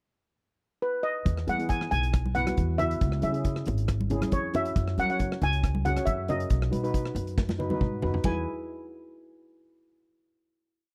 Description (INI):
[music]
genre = calypso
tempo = 138 BPM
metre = 4/4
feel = straight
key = E major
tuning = A4 = 440 Hz
[part]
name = steel pan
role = melody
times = 0.8-8.4 s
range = B4 to G#5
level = -33 LUFS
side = equal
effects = none
[part]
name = upright bass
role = bass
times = 1.3-8.4 s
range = G#1 to F#3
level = -32 LUFS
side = equal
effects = none
[part]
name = modern studio drum kit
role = drums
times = 1.3-8.3 s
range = hi-hat, kick drum, ride cymbal, rim click, snare drum, toms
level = -31 LUFS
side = equal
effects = none
[part]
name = steel pan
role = accompaniment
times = 1.5-8.4 s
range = B3 to C#5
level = -36 LUFS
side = equal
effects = none
[part]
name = congas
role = percussion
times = 1.5-8.4 s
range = none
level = -37 LUFS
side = equal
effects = none
[sound]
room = studio reverb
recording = dry, close 1970s-style studio recording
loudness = -28 LUFS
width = mono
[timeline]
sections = 0.0-1.3 pickup bar; 1.3-8.2 verse; 8.2-10.0 final chord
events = drum fill 7.4-8.2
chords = 0.0 N.C.; 1.3 E; 3.0 C#m; 4.8 F#; 6.5 B; 8.2 E